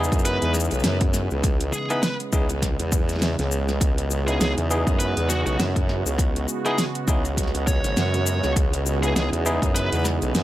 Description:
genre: glitch hop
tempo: 101 BPM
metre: 4/4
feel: swing 57% on 16ths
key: C# minor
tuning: A4 = 440 Hz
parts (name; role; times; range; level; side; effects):
- warm analog pad; sustained chords; 0.0-10.4 s; C#3 to F#4; -30 LUFS; right 2 dB; chorus, sidechain pumping
- barky tine electric piano; stabs; 0.0-10.4 s; B3 to G#4; -28 LUFS; equal; sidechain pumping, tape echo
- formant-sweep wobble bass; bass; 0.0-10.4 s; G#1 to F#2; -24 LUFS; equal; chorus, overdrive
- pop drum kit; drums; 0.0-10.4 s; hi-hat, shaker, snare drum; -27 LUFS; equal; overdrive
- electronic kick drum; drums; 0.1-9.7 s; none; -22 LUFS; equal; overdrive
- high-gain lead guitar; melody; 0.3-10.0 s; F#4 to C#5; -30 LUFS; equal; distortion, tape echo
room: light reverb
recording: none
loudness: -20 LUFS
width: side -14 dB against mid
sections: 0.0-10.4 A section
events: none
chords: 0.0 C#m7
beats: 0.25 0.84 | 1.44 2.03 2.63 3.22 | 3.81 4.41 5.00 5.60 | 6.19 6.79 7.38 7.97 | 8.57 9.16 9.76 10.35

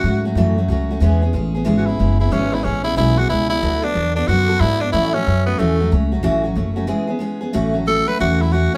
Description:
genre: rock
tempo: 184 BPM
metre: 4/4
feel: swing 64% on 8ths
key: A major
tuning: A4 = 441 Hz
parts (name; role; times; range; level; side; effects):
- growling tenor saxophone; melody; 0.0-8.8 s; A3 to B4; -22 LUFS; equal; none
- picked steel-string acoustic guitar; accompaniment; 0.0-8.8 s; A2 to A4; -23 LUFS; equal; none
- upright bass; bass; 0.0-8.7 s; F#1 to A2; -21 LUFS; equal; none
room: moderate studio reverb, RT60 0.6 s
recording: band playing live in one room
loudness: -18 LUFS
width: mono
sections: 0.0-7.5 A section; 7.5-8.8 B section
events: break 6.9-7.5; tenor saxophone solo 7.5-8.8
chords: 0.0 A6; 1.0 E6; 3.6 D6; 4.9 A6; 6.9 E6; 7.5 A6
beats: 0.04 0.36 0.69 | 1.01 1.34 1.67 1.99 | 2.32 2.65 2.97 3.30 | 3.63 3.95 4.28 4.61 | 4.93 5.26 5.59 5.91 | 6.24 6.57 6.89 7.22 | 7.54 7.87 8.20 8.52

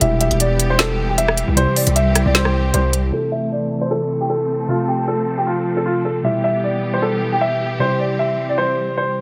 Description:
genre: hip hop, trap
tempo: 154 BPM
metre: 4/4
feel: half-time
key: A minor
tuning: A4 = 440 Hz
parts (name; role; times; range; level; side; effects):
- warm baby grand piano; melody; 0.0-9.1 s; F4 to E5; -22 LUFS; equal; low-pass filter
- muted felt-like synth keys; accompaniment; 0.0-9.2 s; B2 to A4; -25 LUFS; equal; chorus, low-pass filter
- rich symphonic string section; sustained chords; 0.0-9.2 s; E3 to A4; -28 LUFS; equal; low-pass filter
- distorted 808-style bass; bass; 0.0-3.1 s; E1 to C2; -22 LUFS; equal; distortion
- trap drum kit; drums; 0.0-3.0 s; hi-hat, rim click, snare drum; -21 LUFS; equal; none
room: light reverb, small room ambience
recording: none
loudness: -18 LUFS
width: mono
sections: 0.0-3.1 A section; 3.1-9.2 B section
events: filter sweep 3.1-9.2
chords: 0.0 Em; 1.6 C; 3.1 Am; 4.7 F; 6.2 Em; 7.8 C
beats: | 0.01 0.40 0.79 1.18 | 1.57 1.96 2.35 2.74 | 3.13 3.52 3.91 4.30 | 4.69 5.08 5.47 5.86 | 6.25 6.63 7.03 7.41 | 7.80 8.19 8.58 8.97

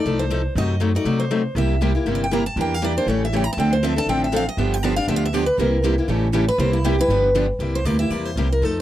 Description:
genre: acoustic string swing (jazz manouche)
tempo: 238 BPM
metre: 4/4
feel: swing 55% on 8ths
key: C mixolydian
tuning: A4 = 444 Hz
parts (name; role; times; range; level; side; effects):
- picked steel-string acoustic guitar; melody; 0.0-8.8 s; E4 to Bb5; -24 LUFS; equal; none
- picked steel-string acoustic guitar; accompaniment; 0.0-8.8 s; C3 to A4; -23 LUFS; left 4 dB; none
- upright bass; bass; 0.1-8.8 s; G1 to C3; -22 LUFS; right 1 dB; none
- picked steel-string acoustic guitar; accompaniment; 1.6-7.5 s; C3 to Bb4; -26 LUFS; right 10 dB; none
room: light reverb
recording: dry, close 1970s-style studio recording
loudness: -18 LUFS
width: side -13 dB against mid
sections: 0.0-7.6 A section; 7.6-8.8 B section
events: steel-string acoustic guitar solo 0.0-7.6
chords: 0.0 F7; 0.6 F#dim7; 1.6 C7; 2.6 Em7b5; 3.1 A7; 3.6 Dm7; 4.6 G7; 5.6 C7; 6.1 A7; 6.6 C7; 7.1 G7; 7.6 C7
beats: 0.06 0.31 | 0.56 0.81 1.06 1.31 | 1.56 1.82 2.07 2.32 | 2.57 2.82 3.07 3.32 | 3.58 3.83 4.08 4.33 | 4.58 4.83 5.08 5.34 | 5.59 5.84 6.09 6.34 | 6.60 6.85 7.10 7.35 | 7.61 7.86 8.11 8.37 | 8.62

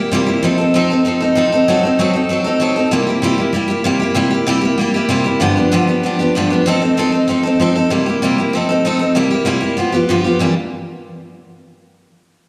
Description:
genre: rock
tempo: 193 BPM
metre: 4/4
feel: straight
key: unclear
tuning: A4 = 440 Hz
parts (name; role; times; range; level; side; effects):
- picked steel-string acoustic guitar; solo; 0.0-10.5 s; G2 to A4; -16 LUFS; equal; slapback echo
room: moderate lush hall reverb, RT60 2.7 s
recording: live gig heard through the venue's PA, recital hall reverb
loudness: -15 LUFS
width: mono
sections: 0.0-10.4 A section; 10.4-11.7 B section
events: none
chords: 0.4 F7; 1.7 F#dim7; 2.9 C7; 5.4 G7; 6.7 F7; 7.9 C7; 8.5 F7; 9.2 C7; 9.8 G7; 10.4 C9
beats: 0.13 | 0.44 0.75 1.06 1.37 | 1.68 1.99 2.31 2.62 | 2.93 3.24 3.55 3.86 | 4.17 4.49 4.80 5.11 | 5.42 5.73 6.04 6.35 | 6.67 6.98 7.29 7.60 | 7.91 8.22 8.54 8.85 | 9.16 9.47 9.78 10.09 | 10.41

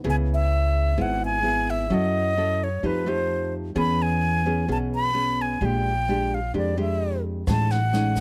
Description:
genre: bossa nova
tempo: 129 BPM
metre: 4/4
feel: straight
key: unclear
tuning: A4 = 443 Hz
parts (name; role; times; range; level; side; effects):
- nylon-string guitar; accompaniment; 0.0-8.2 s; E#2 to A4; -29 LUFS; equal; none
- upright bass; bass; 0.0-8.2 s; G#1 to F#2; -28 LUFS; equal; none
- breathy concert flute; melody; 0.1-8.2 s; B4 to B5; -28 LUFS; equal; none
- compact cocktail drum kit; drums; 7.5-8.2 s; kick drum, rim click, snare drum; -31 LUFS; equal; none
- tube shaker; percussion; 7.5-8.2 s; none; -46 LUFS; equal; none
room: little or no reverb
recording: close, detailed microphones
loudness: -24 LUFS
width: mono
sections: 0.0-8.2 A section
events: none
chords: 0.0 C#m7; 1.9 F#m7; 2.8 F9; 3.8 E6; 5.6 A#6; 7.5 Amaj7#11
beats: | 0.05 0.51 0.98 1.44 | 1.91 2.37 2.83 3.30 | 3.76 4.22 4.69 5.15 | 5.62 6.08 6.54 7.01 | 7.47 7.93

